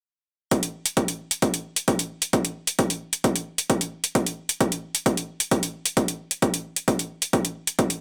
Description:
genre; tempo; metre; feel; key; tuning
driving peak-time techno; 132 BPM; 4/4; straight; none; none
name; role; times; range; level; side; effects
electronic hi-hat; drums; 0.5-8.0 s; none; -27 LUFS; equal; none
electronic kick drum; drums; 0.5-7.9 s; none; -25 LUFS; equal; high-pass filter on kick, high-pass filter on room
room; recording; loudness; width
little or no reverb; none; -25 LUFS; mono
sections
0.5-8.0 A section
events
none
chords
none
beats
| 0.52 0.97 1.42 1.88 | 2.33 2.79 3.24 3.70 | 4.15 4.61 5.06 5.51 | 5.97 6.42 6.88 7.33 | 7.79

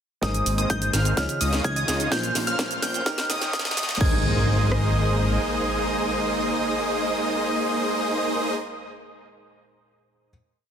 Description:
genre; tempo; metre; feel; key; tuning
EDM, festival progressive house; 127 BPM; 4/4; straight; Ab major; A4 = 440 Hz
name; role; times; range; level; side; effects
soft synth bell; melody; 0.2-8.8 s; Eb6 to Ab6; -30 LUFS; right 1 dB; chorus, tape echo
warm baby grand piano; accompaniment; 0.2-10.3 s; Bb2 to Db5; -35 LUFS; left 1 dB; sidechain pumping
lush unison pad; sustained chords; 0.2-8.5 s; Db3 to Eb5; -34 LUFS; right 1 dB; chorus, sidechain pumping
plucky unison lead; arpeggios; 0.2-8.5 s; Eb6 to G6; -31 LUFS; equal; sidechain pumping, tape echo
big supersaw lead; riff; 0.2-8.5 s; Ab3 to G5; -27 LUFS; right 1 dB; sidechain pumping, low-pass filter, tape echo
fat analog bass; bass; 0.2-5.4 s; Eb1 to Db2; -25 LUFS; equal; sidechain pumping
big-room dance drum kit; drums; 0.2-4.8 s; kick drum, rim click; -26 LUFS; equal; overdrive, high-pass filter on kick, high-pass filter on snare
house drum kit; drums; 0.2-4.1 s; crash cymbal, hi-hat, shaker, snare drum; -28 LUFS; equal; none
riser and impact; sound effects; 1.9-8.9 s; none; -33 LUFS; equal; none
room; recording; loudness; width
light reverb; dense, heavily limited modern master, high-pass filter; -21 LUFS; side -8 dB against mid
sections
0.2-4.0 build; 4.0-7.8 final chord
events
build-up 0.2-4.0; drum fill 0.2-4.0; filter sweep on supersaw synth 0.2-4.0; filter sweep 0.2-4.0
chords
0.2 Abadd9; 1.2 Dbadd9; 2.1 Bbmadd9; 3.1 Eb7; 4.0 Abadd9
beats
| 0.23 0.70 1.17 1.64 | 2.12 2.59 3.06 3.53 | 4.01 4.48 4.95 5.42 | 5.90 6.37 6.84 7.31

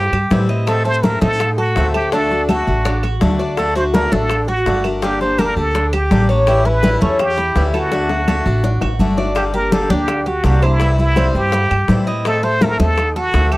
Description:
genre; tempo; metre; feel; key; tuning
latin, Cuban son and guajira; 166 BPM; 4/4; straight; G harmonic minor; A4 = 440 Hz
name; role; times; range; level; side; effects
trumpet with plunger mute; melody; 0.0-13.6 s; E4 to C5; -19 LUFS; equal; none
Cuban tres; arpeggios; 0.0-13.6 s; C#4 to Eb5; -23 LUFS; equal; none
upright bass; bass; 0.0-13.6 s; G1 to A2; -18 LUFS; equal; none
bongos; percussion; 0.1-13.6 s; none; -27 LUFS; left 5 dB; none
claves; percussion; 0.1-13.6 s; none; -30 LUFS; right 7 dB; none
congas; percussion; 0.1-13.6 s; none; -20 LUFS; left 1 dB; none
picked swing-style acoustic guitar; accompaniment; 0.3-13.6 s; C3 to G4; -23 LUFS; left 3 dB; none
room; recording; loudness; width
little or no reverb; dry, close 1970s-style studio recording; -14 LUFS; side -19 dB against mid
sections
0.0-9.4 A section; 9.4-13.6 A section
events
drum fill 7.9-9.4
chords
0.0 C; 0.7 Adim; 2.1 D; 5.0 Gm; 6.5 A7; 7.9 D; 9.4 Gm; 10.8 C; 12.3 Adim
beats
0.31 | 0.67 1.04 1.40 1.76 | 2.13 2.49 2.85 3.21 | 3.58 3.94 4.30 4.66 | 5.02 5.39 5.75 6.11 | 6.47 6.83 7.19 7.55 | 7.92 8.28 8.64 9.00 | 9.36 9.72 10.08 10.44 | 10.81 11.17 11.53 11.89 | 12.25 12.61 12.98 13.34

